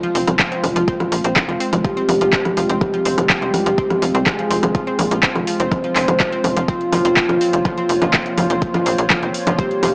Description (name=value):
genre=melodic techno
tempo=124 BPM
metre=4/4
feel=straight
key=F minor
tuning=A4 = 439 Hz
part: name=soft octave-layered synth lead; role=melody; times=0.0-9.9 s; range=F4 to C5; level=-23 LUFS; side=equal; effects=chorus, phaser, sidechain pumping, analog delay
part: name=dark analog pad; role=sustained chords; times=0.0-9.9 s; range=Ab3 to Db5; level=-28 LUFS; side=equal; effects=chorus, sidechain pumping
part: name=analog pluck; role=arpeggios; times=0.0-9.9 s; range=F3 to C5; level=-28 LUFS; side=equal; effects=chorus, sidechain pumping, analog delay
part: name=deep house drum kit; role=drums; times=0.0-9.9 s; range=congas, handclaps, hi-hat, rim click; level=-22 LUFS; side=equal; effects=overdrive, sidechain pumping on hats, sidechain pumping on perc
part: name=impact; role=sound effects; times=0.0-0.9 s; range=none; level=barely audible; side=none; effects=none
part: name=tight sequencer bass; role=bass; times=0.2-9.9 s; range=F1 to C2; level=-23 LUFS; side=equal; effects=sidechain pumping
part: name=electronic kick drum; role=drums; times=0.4-9.7 s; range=none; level=-25 LUFS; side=equal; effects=overdrive
room=light reverb, digital ambience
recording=dry, gritty hardware recording, small speaker sound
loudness=-18 LUFS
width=mono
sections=0.0-9.9 A section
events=impact 0.0-0.9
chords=0.0 Fm; 6.7 Bbmadd9/F